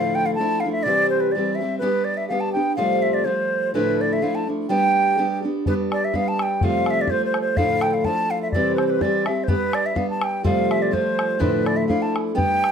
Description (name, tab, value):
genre	celtic folk, Celtic polka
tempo	125 BPM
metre	2/4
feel	swing 54% on 8ths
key	G mixolydian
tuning	A4 = 442 Hz
part	wooden flute	melody	0.0-12.7 s	B4 to A5	-22 LUFS	right 1 dB	none
part	fingerpicked steel-string acoustic guitar	accompaniment	0.0-12.7 s	D2 to G4	-22 LUFS	equal	none
part	bodhran	percussion	5.7-12.7 s	none	-26 LUFS	left 1 dB	none
room	moderate studio reverb, RT60 0.6 s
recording	none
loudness	-19 LUFS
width	side -7 dB against mid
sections	0.0-5.7 A section; 5.7-12.7 A section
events	none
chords	0.0 Dmadd9; 0.9 C; 1.8 G; 2.8 Fadd9; 3.7 Dmadd9; 4.7 G; 6.6 Fadd9; 7.6 Dmadd9; 8.5 C; 9.5 G; 10.4 Fadd9; 11.4 Dmadd9